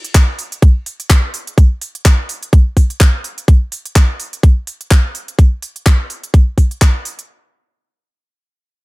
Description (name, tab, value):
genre	house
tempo	126 BPM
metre	4/4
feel	swing 57% on 16ths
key	none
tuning	none
part	garage drum kit	drums	0.0-7.3 s	handclaps, hi-hat	-20 LUFS	equal	none
part	electronic kick drum	drums	0.1-6.9 s	none	-8 LUFS	equal	none
room	little or no reverb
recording	none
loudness	-11 LUFS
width	side -23 dB against mid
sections	0.0-7.3 A section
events	none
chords	none